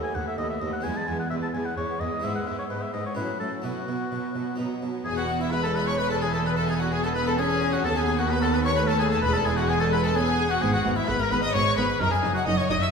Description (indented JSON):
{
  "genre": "classical, baroque-style concerto movement with solo episodes",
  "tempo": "129 BPM",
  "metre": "3/4",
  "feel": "straight",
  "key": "E major",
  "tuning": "A4 = 440 Hz",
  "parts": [
    { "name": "rich chamber violin section", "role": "melody", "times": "0.0-12.9 s", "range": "D#4 to E6", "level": "-32 LUFS", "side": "left 3 dB", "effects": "none" },
    { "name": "warm oboe", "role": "melody", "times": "0.0-12.9 s", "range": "E4 to A5", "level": "-29 LUFS", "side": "left 2 dB", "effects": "none" },
    { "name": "warm studio violin section", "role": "second line", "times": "0.0-12.9 s", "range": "B3 to E5", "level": "-30 LUFS", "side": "left 3 dB", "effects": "none" },
    { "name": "harpsichord", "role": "accompaniment", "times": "0.0-12.9 s", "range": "D#2 to D#5", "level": "-33 LUFS", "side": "right 2 dB", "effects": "none" },
    { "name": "rich studio viola section", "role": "accompaniment", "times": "0.0-12.8 s", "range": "F#3 to D#4", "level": "-31 LUFS", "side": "left 1 dB", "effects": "none" },
    { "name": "warm studio cello section", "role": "bass", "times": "0.2-12.8 s", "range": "D#2 to B2", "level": "-31 LUFS", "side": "right 3 dB", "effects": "none" },
    { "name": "rich studio double bass section", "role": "bass", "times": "5.0-12.8 s", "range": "E1 to D#2", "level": "-30 LUFS", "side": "right 3 dB", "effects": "none" }
  ],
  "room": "wet recital hall reverb, RT60 1.4 s",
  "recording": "heard from further back in the room",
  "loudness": "-23 LUFS",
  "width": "side -5 dB against mid",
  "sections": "0.0-5.1 A section; 5.1-12.9 B section",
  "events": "none",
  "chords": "0.0 B7/D#; 0.8 E; 2.2 E/G#; 3.2 F#m7/A; 3.6 Bsus4; 4.6 B; 5.1 E; 6.5 B/E; 7.8 B7/D#; 9.2 E; 10.6 G#m; 12.0 D#m/F#"
}